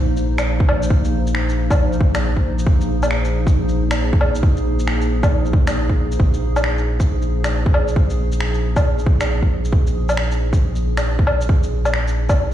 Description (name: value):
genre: future garage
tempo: 136 BPM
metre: 4/4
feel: swing 63% on 16ths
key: unclear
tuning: A4 = 440 Hz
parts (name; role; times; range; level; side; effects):
- warbly tape-like pad; sustained chords; 0.0-12.5 s; F3 to C5; -24 LUFS; equal; chorus, built-in reverb, sidechain pumping
- soft dub sub bass; bass; 0.0-12.5 s; Bb1; -20 LUFS; equal; sidechain pumping
- electronic shaker, finger snaps and woodblock; drums; 0.2-12.5 s; none; -24 LUFS; left 1 dB; none
- electronic kick drum; drums; 0.6-12.4 s; none; -16 LUFS; equal; none
room: little or no reverb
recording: played on a big sound system in a bare room, stone room reverb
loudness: -16 LUFS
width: side -11 dB against mid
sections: 0.0-12.5 A section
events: none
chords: 0.0 Bb9sus4